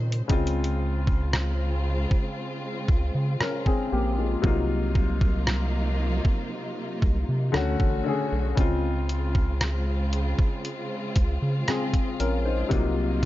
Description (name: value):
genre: contemporary R&B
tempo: 58 BPM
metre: 4/4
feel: straight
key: unclear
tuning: A4 = 440 Hz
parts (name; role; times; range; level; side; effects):
- warm baby grand piano; accompaniment; 0.0-13.3 s; C3 to C5; -29 LUFS; left 3 dB; none
- dark studio string section; sustained chords; 0.0-13.3 s; C3 to C5; -33 LUFS; equal; sidechain pumping
- round analog bass; bass; 0.0-13.3 s; A1 to Db3; -26 LUFS; equal; none
- detuned 8-bit digital drum machine; drums; 0.1-13.3 s; hi-hat, kick drum, rim click; -24 LUFS; equal; none
room: studio reverb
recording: dark, warm production, nothing above 7.5 kHz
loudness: -23 LUFS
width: side -15 dB against mid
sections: 0.3-13.3 A section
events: none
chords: 0.3 Dbmaj7; 4.4 Ab13/C; 7.5 Dmaj7; 8.6 Dbmaj7; 12.7 Ab13/C (rootless)